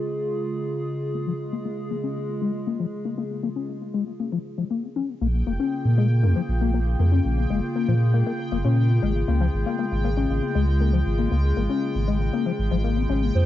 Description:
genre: IDM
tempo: 118 BPM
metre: 4/4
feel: straight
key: unclear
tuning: A4 = 440 Hz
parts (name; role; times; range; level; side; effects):
- warbly tape-like pad; sustained chords; 0.0-13.5 s; C3 to A5; -29 LUFS; equal; chorus, built-in reverb, cassette tape
- deep acid bass; arpeggios; 1.1-13.5 s; F3 to Db4; -27 LUFS; left 7 dB; analog chorus, cassette tape, analog delay
- warm sub bass; bass; 5.2-13.5 s; F1 to Bb2; -21 LUFS; equal; none
- bubbling stepped-filter texture; texture; 5.2-13.5 s; G5; -37 LUFS; right 1 dB; chorus, built-in reverb, cassette tape
- warbly nostalgic lead; melody; 13.3-13.5 s; C5; -26 LUFS; right 6 dB; ensemble chorus
room: little or no reverb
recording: home recording on cassette, nothing above 7.7 kHz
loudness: -21 LUFS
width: side -12 dB against mid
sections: 0.0-5.2 A section; 5.2-13.5 B section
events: none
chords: 0.0 Bbm7 (rootless); 1.1 Db; 5.2 Bbm7; 9.3 Db

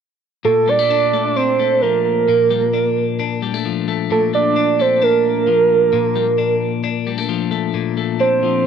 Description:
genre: indie pop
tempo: 131 BPM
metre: 4/4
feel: straight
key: Bb major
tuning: A4 = 441 Hz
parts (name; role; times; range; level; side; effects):
- soft octave-layered synth lead; melody; 0.4-8.7 s; A4 to D5; -15 LUFS; right 4 dB; chorus, phaser, cassette tape, plate reverb
- twelve-string electric guitar; arpeggios; 0.4-8.7 s; Bb2 to D4; -20 LUFS; left 10 dB; none
room: moderate small room ambience, RT60 0.5 s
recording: home recording on cassette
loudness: -14 LUFS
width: side -7 dB against mid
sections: 0.5-7.8 A section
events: none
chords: 0.5 Bbmaj7

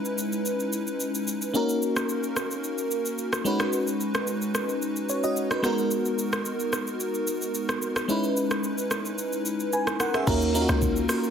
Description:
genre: amapiano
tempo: 110 BPM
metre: 4/4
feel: straight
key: G# minor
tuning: A4 = 440 Hz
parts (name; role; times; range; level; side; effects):
- FM electric piano with soft pad layer; accompaniment; 0.0-11.3 s; G#3 to G#5; -26 LUFS; equal; chorus
- afro-pop drum kit; drums; 0.1-11.3 s; crash cymbal, hi-hat, kick drum, rim click, shaker; -30 LUFS; equal; none
- hollow log drum bass; bass; 10.3-11.1 s; C#2 to D#2; -27 LUFS; equal; none
room: light reverb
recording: heavily compressed radio sound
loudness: -24 LUFS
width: side -8 dB against mid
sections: 0.0-10.3 A section; 10.3-11.3 B section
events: drop 10.3-11.3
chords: 0.0 C#m7; 1.5 D#m7; 3.5 B6; 5.6 G#m9; 8.1 C#m7; 10.3 D#m7

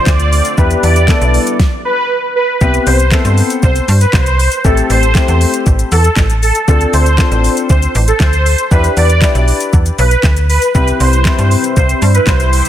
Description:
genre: dance-pop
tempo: 118 BPM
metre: 4/4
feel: straight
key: C major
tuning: A4 = 440 Hz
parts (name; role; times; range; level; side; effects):
- filtered supersaw swell; melody; 0.0-12.6 s; A4 to D5; -15 LUFS; right 1 dB; phaser, sidechain pumping, tape echo
- sweeping resonant pad; sustained chords; 0.0-1.6, 10.8-12.7 s; C3 to F4; -22 LUFS; equal; chorus, sidechain pumping
- slap-like FM bass; bass; 0.1-12.6 s; A1 to G2; -12 LUFS; equal; sidechain pumping
- smooth R&B drum kit; drums; 0.1-12.7 s; handclaps, hi-hat, kick drum, shaker, snare drum; -14 LUFS; equal; none
- warm baby grand piano; accompaniment; 0.6-12.0 s; A3 to B4; -18 LUFS; left 6 dB; sidechain pumping
room: digital ambience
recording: dense, heavily limited modern master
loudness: -9 LUFS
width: side -11 dB against mid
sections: 0.0-2.6 A section; 2.6-12.7 A section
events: drop 0.0-2.6, 2.6-12.7; stop 1.6-2.6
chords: 0.0 Dm7; 0.6 Em7; 1.6 N.C.; 2.6 Cmaj7; 4.6 Am7; 6.7 Dm7; 8.7 Em7; 10.7 Cmaj7

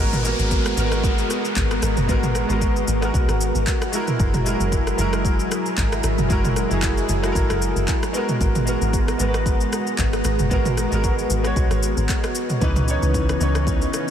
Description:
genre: amapiano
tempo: 114 BPM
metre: 4/4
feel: swing 55% on 16ths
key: G# minor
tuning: A4 = 440 Hz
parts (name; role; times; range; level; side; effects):
- clear concert grand piano; accompaniment; 0.0-14.1 s; E3 to C#5; -25 LUFS; right 1 dB; analog chorus
- lush unison pad; sustained chords; 0.0-14.1 s; C#3 to A#5; -26 LUFS; equal; chorus, phaser, sidechain pumping
- deep log drum bass; bass; 0.0-13.9 s; F#1 to C#2; -23 LUFS; equal; none
- downlifter; sound effects; 0.0-4.2 s; none; -32 LUFS; equal; none
- deep house drum kit; drums; 0.1-14.1 s; handclaps, kick drum, rim click, shaker, toms; -23 LUFS; equal; overdrive
room: moderate huge ambient reverb, RT60 8.6 s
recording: dreamy mix soaked in reverb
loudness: -18 LUFS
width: side -9 dB against mid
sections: 0.0-14.1 A section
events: drop 0.0-14.1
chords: 0.0 G#m9; 3.9 F#9; 8.1 G#m9; 12.6 C#m9

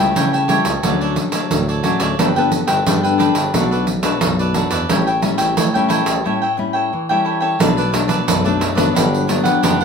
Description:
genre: samba and choro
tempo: 89 BPM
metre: 4/4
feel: straight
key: unclear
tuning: A4 = 440 Hz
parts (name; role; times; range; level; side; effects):
- cavaquinho; accompaniment; 0.0-9.8 s; D4 to G5; -19 LUFS; equal; none
- nylon-string guitar; accompaniment; 0.0-9.8 s; F#2 to A4; -20 LUFS; left 5 dB; none
- mellow tuba; bass; 0.0-9.8 s; F#1 to C#3; -22 LUFS; equal; none
- pandeiro; percussion; 0.2-9.8 s; none; -19 LUFS; right 3 dB; none
room: wet studio reverb, RT60 0.5 s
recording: band playing live in one room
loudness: -14 LUFS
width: side -6 dB against mid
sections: 0.0-7.6 A section; 7.6-9.8 B section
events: break 6.3-7.6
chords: 0.0 A7/C#; 0.8 Dmaj7; 2.2 Gadd9; 3.5 Bm7; 4.9 A7; 7.6 Bm7; 9.0 Gmaj7

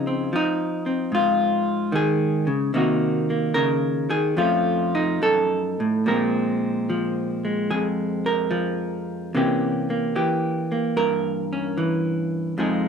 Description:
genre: solo jazz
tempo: 74 BPM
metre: 4/4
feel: swing 67% on 8ths, rubato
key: unclear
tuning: A4 = 440 Hz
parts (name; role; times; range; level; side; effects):
- vintage hollow-body jazz guitar; solo; 0.0-12.9 s; F2 to Bb4; -20 LUFS; equal; none
room: moderate studio reverb, RT60 0.6 s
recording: none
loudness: -20 LUFS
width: side -6 dB against mid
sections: 0.0-12.9 A section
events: none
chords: 0.0 Dbmaj9; 2.7 Cm7b5; 4.4 F7b13; 6.0 Bbsus2; 9.3 C7b9

